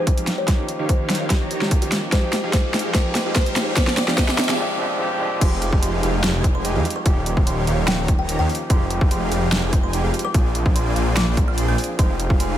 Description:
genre	future bass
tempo	146 BPM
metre	4/4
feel	half-time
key	F minor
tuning	A4 = 435 Hz
part	kalimba	melody	0.0-12.6 s	G4 to G6	-30 LUFS	left 2 dB	sidechain pumping, digital delay
part	overdriven tine electric piano	accompaniment	0.0-12.6 s	F3 to G5	-28 LUFS	right 1 dB	medium tremolo, sidechain pumping, digital delay
part	Celtic harp	arpeggios	0.0-1.2, 12.0-12.6 s	Eb4 to C5	-37 LUFS	right 2 dB	none
part	supersaw chords	riff	0.0-12.6 s	Eb3 to C6	-27 LUFS	equal	sidechain pumping, low-pass filter
part	riser	sound effects	0.6-4.6 s	none	-31 LUFS	equal	none
part	big-room dance drum kit	drums	0.1-12.5 s	crash cymbal, hi-hat, snare drum	-24 LUFS	equal	overdrive, small room ambience
part	electronic kick drum	drums	0.1-12.4 s	none	-18 LUFS	equal	small room ambience
part	wide detuned saw bass	bass	5.4-12.6 s	Eb1 to F2	-22 LUFS	equal	chorus, sidechain pumping
room	light reverb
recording	none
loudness	-18 LUFS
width	side -11 dB against mid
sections	0.0-5.4 A section; 5.4-12.6 B section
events	build-up 0.0-5.4; drum fill 0.0-4.6; riser 0.6-4.6; break 4.6-5.4; drop 5.4-12.6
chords	0.5 Eb7; 2.1 Fm9; 3.8 Fm69; 5.4 Fm9; 7.1 Eb7; 8.7 Fm9; 10.3 Bb7; 12.0 Fm9

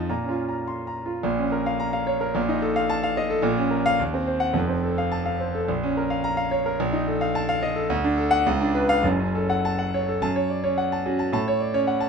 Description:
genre	classical, virtuoso piano study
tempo	101-113 BPM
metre	2/4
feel	rubato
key	Bb minor, F# minor from 7.9 s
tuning	A4 = 440 Hz
part	bright concert grand piano	solo	0.0-12.1 s	F1 to C6	-21 LUFS	equal	none
room	light reverb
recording	minimal, uncompressed stereo recording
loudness	-21 LUFS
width	side -6 dB against mid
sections	0.0-1.2 A section; 1.2-10.2 A section; 10.2-12.1 B section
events	none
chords	0.1 Bbm; 2.4 F7/Bb; 3.4 Bbm; 4.0 Cdim/Eb; 4.5 F; 5.7 Bbm; 6.8 F7/Bb; 7.9 D; 8.5 C#7b9; 9.0 F#m; 11.3 F#m/A

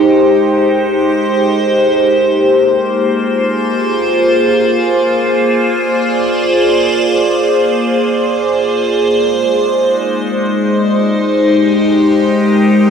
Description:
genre	ambient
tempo	free time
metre	none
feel	none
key	Ab lydian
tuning	A4 = 441 Hz
part	evolving wavetable pad	solo	0.0-12.9 s	Ab3 to D5	-10 LUFS	equal	phaser, built-in reverb, diffuse ambient delay
room	wet huge ambient reverb, RT60 9.4 s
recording	none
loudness	-10 LUFS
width	side -7 dB against mid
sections	0.0-12.9 A section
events	none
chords	0.0 Abmaj9; 2.3 Bb7; 9.1 Abmaj9

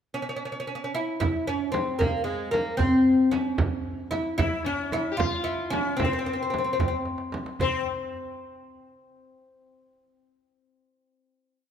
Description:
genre	Persian modal ensemble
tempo	75 BPM (dotted quarters)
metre	6/8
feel	straight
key	C dastgah homayun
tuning	A4 = 438 Hz
part	oud	melody	0.1-7.9 s	Ab3 to F4	-26 LUFS	left 1 dB	none
part	frame drum	percussion	1.2-7.8 s	none	-32 LUFS	right 3 dB	none
part	tombak	percussion	1.2-7.8 s	none	-32 LUFS	right 2 dB	none
part	sitar	second line	4.4-7.9 s	C4 to G4	-32 LUFS	left 5 dB	none
room	moderate scoring stage reverb, RT60 1.8 s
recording	none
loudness	-24 LUFS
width	side -8 dB against mid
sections	0.0-1.2 pickup bar; 1.2-7.6 A section; 7.6-9.2 final note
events	drum fill 7.1-7.6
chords	none

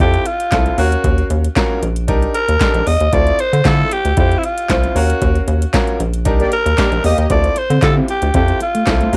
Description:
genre	early-eighties boogie funk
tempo	115 BPM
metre	4/4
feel	straight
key	D phrygian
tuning	A4 = 439 Hz
part	raspy alto saxophone	melody	0.0-9.2 s	E4 to Eb5	-20 LUFS	equal	cassette tape
part	clear grand piano	accompaniment	0.0-9.2 s	C4 to F5	-24 LUFS	equal	cassette tape
part	rubbery square bass	bass	0.0-9.2 s	Bb1 to D3	-18 LUFS	equal	tube saturation
part	electro analog drum machine	drums	0.0-9.2 s	handclaps, hi-hat, kick drum, snare drum	-21 LUFS	equal	none
part	analog synth brass	second line	6.4-7.3 s	Bb3 to Eb5	-22 LUFS	equal	chorus, phaser, cassette tape
part	mellow electric guitar	riff	7.3-9.2 s	A3 to D4	-24 LUFS	equal	lush chorus, cassette tape
room	little or no reverb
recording	home recording on cassette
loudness	-15 LUFS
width	mono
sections	0.0-9.2 A section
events	band accent 5.2-7.3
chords	0.0 Dm9 (rootless); 0.8 Ebm9; 2.1 Cm9; 3.1 Dm9; 5.0 Ebm9; 6.3 Cm9; 7.3 Dm9

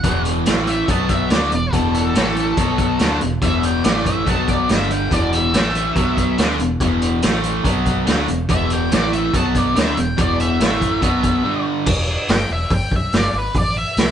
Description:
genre	blues rock power trio and southern rock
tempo	142 BPM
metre	4/4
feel	straight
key	E minor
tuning	A4 = 441 Hz
part	octave-fuzz lead guitar	melody	0.0-14.1 s	A4 to A5	-23 LUFS	equal	wah, distortion
part	overdriven semi-hollow guitar	riff	0.0-11.9 s	E2 to D4	-19 LUFS	equal	none
part	vintage muted fingered electric bass	bass	0.0-14.1 s	E1 to D2	-24 LUFS	equal	none
part	raw garage drum kit	drums	0.0-14.1 s	crash cymbal, hi-hat, kick drum, snare drum	-20 LUFS	equal	none
room	moderate studio reverb, RT60 0.8 s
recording	band playing live in one room, nothing above 10.3 kHz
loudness	-15 LUFS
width	side -9 dB against mid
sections	0.0-11.9 A section; 11.9-14.1 B section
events	break 11.4-11.9; lead electric guitar solo 11.9-14.1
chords	0.5 A5; 0.9 B5; 1.3 E5; 2.2 A5; 2.6 B5; 3.0 E5; 3.8 A5; 4.3 B5; 4.7 G5; 5.1 E5; 5.5 A5; 6.0 B5; 6.4 E5; 7.2 A5; 7.6 B5; 8.1 E5; 8.9 A5; 9.3 B5; 9.8 E5; 10.6 A5; 11.0 B5; 11.4 G5; 11.9 Em; 13.6 Am

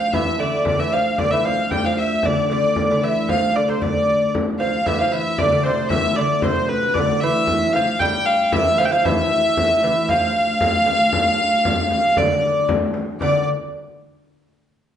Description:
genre	medieval dance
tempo	115 BPM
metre	2/4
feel	straight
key	D minor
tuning	A4 = 439 Hz
part	warm hurdy-gurdy	melody	0.0-13.4 s	B4 to G5	-19 LUFS	equal	none
part	lute	second line	0.0-13.5 s	C3 to G3	-25 LUFS	right 3 dB	none
part	rich fiddle	second line	0.0-13.4 s	B4 to G5	-25 LUFS	left 4 dB	none
part	rich viola da gamba	drone	0.0-13.3 s	D2	-27 LUFS	right 1 dB	none
part	frame drum	percussion	0.1-13.4 s	none	-25 LUFS	left 2 dB	none
room	wet large studio reverb, RT60 1.1 s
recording	band playing live in one room, nothing above 10.9 kHz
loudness	-16 LUFS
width	side -9 dB against mid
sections	0.0-4.9 A section; 4.9-13.2 B section; 13.2-14.2 C section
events	none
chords	none

